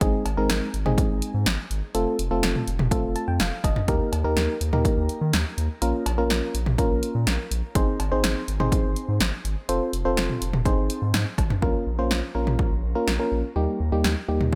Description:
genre	synth-pop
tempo	124 BPM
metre	4/4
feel	straight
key	Bb dorian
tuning	A4 = 440 Hz
part	FM electric piano	accompaniment	0.0-14.6 s	G3 to A5	-29 LUFS	equal	shimmer reverb
part	round analog bass	bass	0.0-14.5 s	F1 to Eb3	-28 LUFS	equal	none
part	punchy analog drum machine	drums	0.0-14.6 s	cowbell, hi-hat, kick drum, snare drum, toms	-27 LUFS	equal	none
room	light reverb, digital ambience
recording	none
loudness	-24 LUFS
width	mono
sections	0.0-11.6 A section; 11.6-14.6 B section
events	FM electric piano fill 2.9-3.9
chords	0.0 Ab; 1.9 F; 3.9 Eb; 5.8 Bbm; 7.8 Ab; 9.7 F; 10.7 Ab; 11.6 Bbm; 13.6 Eb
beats	| 0.01 0.50 0.98 1.46 | 1.95 2.43 2.92 3.40 | 3.88 4.37 4.85 5.33 | 5.82 6.30 6.79 7.27 | 7.75 8.24 8.72 9.21 | 9.69 10.17 10.66 11.14 | 11.62 12.11 12.59 13.08 | 13.56 14.04 14.53

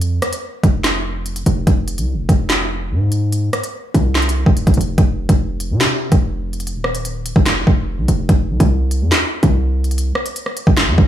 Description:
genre	hip hop, drill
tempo	145 BPM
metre	4/4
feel	half-time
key	F minor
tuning	A4 = 439 Hz
part	hard-hitting 808-style bass	bass	0.0-11.1 s	Eb1 to C3	-17 LUFS	equal	none
part	drill drum kit	drums	0.0-11.1 s	handclaps, hi-hat, kick drum, rim click, snare drum	-16 LUFS	equal	none
room	light reverb, digital ambience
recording	studio ambience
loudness	-14 LUFS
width	side -11 dB against mid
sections	0.0-5.0 A section; 5.0-11.1 B section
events	none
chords	none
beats	| 0.01 0.43 0.84 1.26 | 1.67 2.08 2.50 2.91 | 3.33 3.74 4.15 4.57 | 4.98 5.39 5.81 6.22 | 6.63 7.05 7.46 7.88 | 8.29 8.70 9.12 9.53 | 9.95 10.36 10.77

